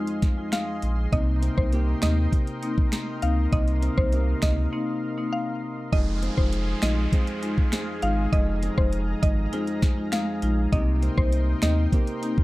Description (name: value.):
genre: dancehall.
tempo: 100 BPM.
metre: 4/4.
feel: straight.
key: F minor.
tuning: A4 = 440 Hz.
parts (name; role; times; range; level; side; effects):
marimba with medium mallets; accompaniment; 0.0-12.4 s; Ab3 to F4; -29 LUFS; left 2 dB; sidechain pumping.
lush unison pad; sustained chords; 0.0-12.4 s; Ab4 to C6; -38 LUFS; equal; chorus, sidechain pumping.
nylon-string guitar; arpeggios; 0.0-12.4 s; F2 to Ab4; -34 LUFS; right 2 dB; none.
afro-pop drum kit; drums; 0.1-12.4 s; finger snaps, hi-hat, kick drum, snare drum; -23 LUFS; equal; none.
mallet-like synth pluck; melody; 0.5-11.8 s; C5 to F5; -32 LUFS; equal; chorus, tape echo.
warm sub bass; bass; 0.8-11.9 s; F1 to Eb2; -24 LUFS; equal; none.
downlifter; sound effects; 5.9-10.7 s; none; -40 LUFS; right 1 dB; none.
room: little or no reverb.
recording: dark, warm production.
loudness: -22 LUFS.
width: side -18 dB against mid.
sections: 0.0-5.9 A section; 5.9-12.4 B section.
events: break 4.7-5.9.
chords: 0.0 Fm7; 1.1 Cm7; 5.9 Fm7; 10.7 Cm7.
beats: 0.53 | 1.13 1.73 2.33 2.93 | 3.53 4.13 4.73 5.33 | 5.93 6.53 7.13 7.73 | 8.33 8.93 9.53 10.13 | 10.73 11.33 11.93.